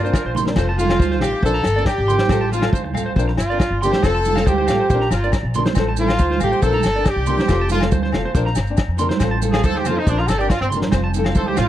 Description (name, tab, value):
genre	highlife guitar band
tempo	139 BPM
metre	4/4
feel	straight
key	F major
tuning	A4 = 440 Hz
part	bright horn section	melody	0.0-11.7 s	C4 to A4	-20 LUFS	equal	none
part	flamenco guitar	accompaniment	0.0-11.7 s	F3 to Bb4	-26 LUFS	left 6 dB	none
part	electric guitar at the edge of break-up	arpeggios	0.0-11.6 s	Bb4 to C6	-26 LUFS	right 3 dB	spring reverb, tape echo
part	upright bass	bass	0.0-11.7 s	F1 to G2	-22 LUFS	equal	none
part	warm soul drum kit	drums	0.1-11.7 s	crash cymbal, kick drum, snare drum	-20 LUFS	equal	none
part	agogo bells	percussion	0.1-11.7 s	none	-32 LUFS	left 16 dB	none
part	maracas	percussion	0.1-11.7 s	none	-36 LUFS	right 17 dB	none
part	congas	percussion	0.3-11.7 s	none	-25 LUFS	right 8 dB	none
room	studio reverb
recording	dry, close 1970s-style studio recording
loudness	-16 LUFS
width	side -12 dB against mid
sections	0.6-11.7 A section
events	horn section solo 0.6-11.7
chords	0.0 Bbadd9; 0.6 F; 1.4 Bbadd9; 2.3 F/A; 3.2 Bbadd9; 4.0 F; 4.9 Bbadd9; 5.8 F/A; 6.6 Bbadd9; 7.5 F; 8.4 Bbadd9; 9.2 F/A; 10.1 Bbadd9; 10.9 F